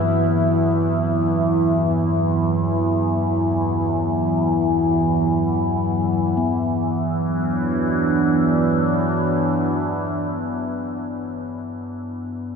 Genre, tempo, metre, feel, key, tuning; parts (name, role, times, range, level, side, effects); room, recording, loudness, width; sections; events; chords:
ambient; free time; E minor; A4 = 441 Hz
sweeping resonant pad; sustained chords; 0.0-11.9 s; E3 to E4; -22 LUFS; equal; chorus, phaser
bronze singing bowl; arpeggios; 0.0-11.3 s; G2 to B3; -26 LUFS; left 2 dB; ping-pong delay
overtone-sweeping drone; drone; 0.0-11.3 s; E2 to E3; -22 LUFS; right 1 dB; chorus, built-in reverb
wet huge ambient reverb, RT60 8.6 s; in a vast, echoing space; -18 LUFS; side -6 dB against mid
0.0-6.4 A section; 6.4-11.6 B section
0.0 E5